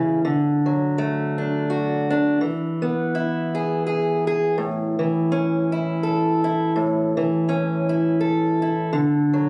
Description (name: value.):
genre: folk, solo fingerstyle acoustic guitar.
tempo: 83 BPM.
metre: 3/4.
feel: swing 56% on 8ths.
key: A major.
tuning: A4 = 439 Hz.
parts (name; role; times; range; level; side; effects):
fingerpicked acoustic archtop guitar; solo; 0.0-9.5 s; A2 to A4; -22 LUFS; equal; none.
room: moderate recital hall reverb, RT60 1.5 s.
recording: recorded on a phone in the room, club ambience, compression.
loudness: -22 LUFS.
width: mono.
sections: 0.0-9.5 A section.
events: none.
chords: 0.2 D; 2.4 E; 4.6 A; 8.9 D.